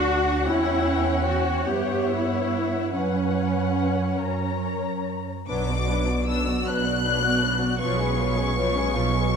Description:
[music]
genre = classical, slow romantic movement for string orchestra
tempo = 45-54 BPM (dotted quarters)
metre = 6/8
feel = rubato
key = B minor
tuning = A4 = 440 Hz
[part]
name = rich symphonic violin section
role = melody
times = 0.0-9.4 s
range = F#5 to F#6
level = -29 LUFS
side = left 5 dB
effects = none
[part]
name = warm symphonic violin section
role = second line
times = 0.0-9.4 s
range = D4 to G5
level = -29 LUFS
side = left 5 dB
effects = none
[part]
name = rich symphonic viola section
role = accompaniment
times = 0.0-9.4 s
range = E#3 to G4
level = -27 LUFS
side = right 1 dB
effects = none
[part]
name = rich chamber cello section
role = bass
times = 0.0-9.4 s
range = B2 to D4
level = -29 LUFS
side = right 3 dB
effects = none
[part]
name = rich symphonic double bass section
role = bass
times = 0.0-9.4 s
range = B1 to G2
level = -28 LUFS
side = right 3 dB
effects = none
[sound]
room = moderate concert hall reverb, RT60 2.0 s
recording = dark, warm production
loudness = -22 LUFS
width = side -6 dB against mid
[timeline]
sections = 0.0-5.5 A section; 5.5-9.4 A section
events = none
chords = 0.5 Em; 2.9 F#sus4; 5.5 Bm; 7.8 C#7/B

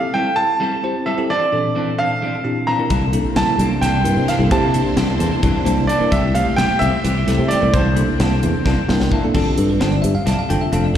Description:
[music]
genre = electric jazz fusion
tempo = 261 BPM (eighths)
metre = 7/8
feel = straight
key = C mixolydian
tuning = A4 = 441 Hz
[part]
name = bright grand piano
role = melody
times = 0.0-9.1 s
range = C5 to Bb5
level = -21 LUFS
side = right 2 dB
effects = slapback echo, analog delay
[part]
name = bell-like tine electric piano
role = accompaniment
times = 0.0-11.0 s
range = Bb2 to G5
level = -22 LUFS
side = left 1 dB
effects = medium stereo tremolo, slapback echo
[part]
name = electric guitar at the edge of break-up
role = stabs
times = 0.1-11.0 s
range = E3 to A4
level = -25 LUFS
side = left 1 dB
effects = analog chorus, slapback echo
[part]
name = string machine, violins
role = sustained chords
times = 2.9-9.3 s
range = C3 to C5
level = -26 LUFS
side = equal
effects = ensemble chorus
[part]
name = sustaining fretless electric bass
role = bass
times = 2.9-11.0 s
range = F1 to C3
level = -18 LUFS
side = equal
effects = analog chorus
[part]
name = crisp fusion drum kit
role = drums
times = 2.9-11.0 s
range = crash cymbal, hi-hat, kick drum, snare drum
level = -23 LUFS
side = equal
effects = none
[sound]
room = little or no reverb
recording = live gig heard through the venue's PA, recital hall reverb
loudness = -15 LUFS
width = side -10 dB against mid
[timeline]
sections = 0.0-9.3 A section; 9.3-11.0 B section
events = drum fill 8.7-9.3; tine electric piano fill 8.7-9.3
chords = 0.0 Gsus4; 1.3 Bbmaj9#11; 2.9 C13; 6.1 C6; 7.7 C13; 9.3 G9sus4

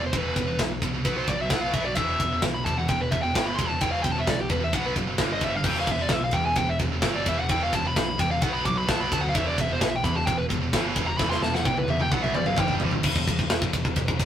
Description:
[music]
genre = heavy metal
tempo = 130 BPM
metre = 4/4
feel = straight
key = E minor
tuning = A4 = 440 Hz
[part]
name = dark smooth lead guitar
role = melody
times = 0.0-12.7 s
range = G4 to D6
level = -27 LUFS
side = equal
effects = overdrive
[part]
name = heavy high-gain guitar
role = riff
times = 0.0-13.0 s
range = E2 to B3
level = -30 LUFS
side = right 4 dB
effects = distortion
[part]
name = scooped high-gain guitar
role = riff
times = 0.0-14.2 s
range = E2 to B3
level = -34 LUFS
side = left 2 dB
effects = none
[part]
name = growling picked electric bass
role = bass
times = 0.0-14.2 s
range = E1 to E2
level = -31 LUFS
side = left 1 dB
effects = overdrive
[part]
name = tight metal drum kit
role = drums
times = 0.1-14.2 s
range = crash cymbal, kick drum, ride cymbal, snare drum, toms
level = -26 LUFS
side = equal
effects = none
[sound]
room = light reverb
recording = rough rehearsal-room recording, warm saturation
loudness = -22 LUFS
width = side -10 dB against mid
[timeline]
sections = 0.0-13.0 A section; 13.0-14.2 B section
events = lead electric guitar solo 0.0-13.0; drum fill 11.2-13.0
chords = 0.0 E5; 1.0 B5; 2.0 Em; 4.7 B5; 5.2 G5; 5.7 Em; 8.4 B5; 9.3 E5; 12.1 B5; 12.6 G5; 13.0 E5

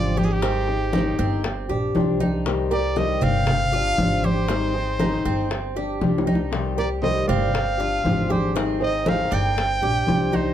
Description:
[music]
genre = latin, Cuban son and guajira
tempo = 118 BPM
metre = 4/4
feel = straight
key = unclear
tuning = A4 = 440 Hz
[part]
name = bright trumpet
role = melody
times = 0.0-10.5 s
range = G4 to G5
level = -25 LUFS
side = equal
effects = none
[part]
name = nylon-string guitar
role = second line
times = 0.0-10.5 s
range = Eb4 to D5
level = -30 LUFS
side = right 5 dB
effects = none
[part]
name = fingerpicked old ladder-braced acoustic guitar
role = accompaniment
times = 0.0-10.5 s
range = C3 to Ab4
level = -27 LUFS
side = left 5 dB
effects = none
[part]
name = Cuban tres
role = arpeggios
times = 0.0-10.5 s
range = C4 to G4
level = -29 LUFS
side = right 5 dB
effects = none
[part]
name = upright bass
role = bass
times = 0.0-10.5 s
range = G1 to C2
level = -26 LUFS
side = equal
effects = none
[part]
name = congas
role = percussion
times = 0.2-10.5 s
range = none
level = -26 LUFS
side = equal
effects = none
[part]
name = bongos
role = percussion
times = 0.4-10.3 s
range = none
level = -31 LUFS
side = left 5 dB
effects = none
[sound]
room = wet studio ambience, RT60 0.5 s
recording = dark, warm production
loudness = -20 LUFS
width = side -10 dB against mid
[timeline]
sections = 0.0-10.5 A section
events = drum fill 6.0-6.5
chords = 0.4 Abmaj7; 1.4 G7sus4; 2.5 Cm; 3.5 G7sus4; 4.5 Abmaj7; 5.5 G7sus4; 6.5 Cm; 7.5 G7sus4; 8.6 Abmaj7; 9.6 G7sus4

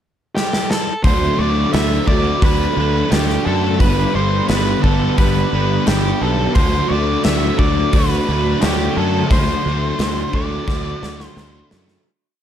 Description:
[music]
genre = rock, shoegaze and dream pop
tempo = 87 BPM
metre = 4/4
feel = straight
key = unclear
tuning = A4 = 439 Hz
[part]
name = octave-fuzz lead guitar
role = melody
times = 0.4-11.7 s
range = G4 to E5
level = -23 LUFS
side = equal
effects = distortion, slapback echo
[part]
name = gated 80s drum kit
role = drums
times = 0.4-12.0 s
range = hi-hat, kick drum, snare drum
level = -18 LUFS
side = equal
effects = none
[part]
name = overdriven electric guitar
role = riff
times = 1.0-12.0 s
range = G2 to D4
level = -19 LUFS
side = right 1 dB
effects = wide subtle chorus
[part]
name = fuzz fingered electric bass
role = bass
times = 1.0-12.0 s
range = G1 to F#2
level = -20 LUFS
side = equal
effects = overdrive
[sound]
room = small room ambience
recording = dark, warm production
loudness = -14 LUFS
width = side -10 dB against mid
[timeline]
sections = 0.0-1.0 pickup bar; 1.0-12.1 verse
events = drum fill 0.4-1.0, 10.7-12.1; fade-out 9.3-12.1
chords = 0.0 N.C.; 1.0 D; 3.8 G; 6.6 D

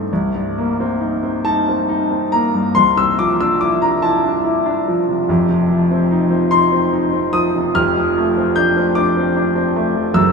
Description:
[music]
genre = classical, impressionist solo piano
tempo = 43-51 BPM (dotted quarters)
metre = 6/8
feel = rubato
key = unclear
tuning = A4 = 440 Hz
[part]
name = clear concert grand piano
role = solo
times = 0.0-10.3 s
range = F1 to G6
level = -14 LUFS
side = left 1 dB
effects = none
[sound]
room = wet cathedral reverb, RT60 6.0 s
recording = in a vast, echoing space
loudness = -14 LUFS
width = side -4 dB against mid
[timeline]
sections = 0.1-10.3 A section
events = none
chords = 0.1 Cm7; 2.8 Dm9/C; 5.3 F5; 7.8 F69

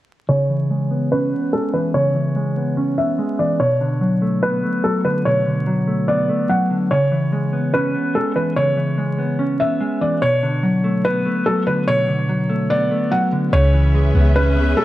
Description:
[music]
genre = hip hop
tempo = 145 BPM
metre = 4/4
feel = half-time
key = C# phrygian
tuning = A4 = 440 Hz
[part]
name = felt-muted upright piano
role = melody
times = 0.3-14.8 s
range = A4 to F#5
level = -21 LUFS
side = equal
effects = low-pass filter
[part]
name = mellow electric guitar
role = accompaniment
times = 0.3-14.8 s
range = B2 to C#4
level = -18 LUFS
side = equal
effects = low-pass filter
[part]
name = dark symphonic string section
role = sustained chords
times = 13.5-14.8 s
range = C#4 to E5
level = -26 LUFS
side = left 1 dB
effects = none
[part]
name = warm 808-style bass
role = bass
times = 13.5-14.7 s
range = C#2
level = -15 LUFS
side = equal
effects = none
[sound]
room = light reverb, small room ambience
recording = vinyl crackle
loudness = -16 LUFS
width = side -15 dB against mid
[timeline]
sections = 0.3-13.5 A section; 13.5-14.8 B section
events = filter sweep 0.3-13.5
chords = 0.3 C#m7; 3.6 Bm7; 6.9 C#m7; 10.2 Bm7; 13.5 C#m7

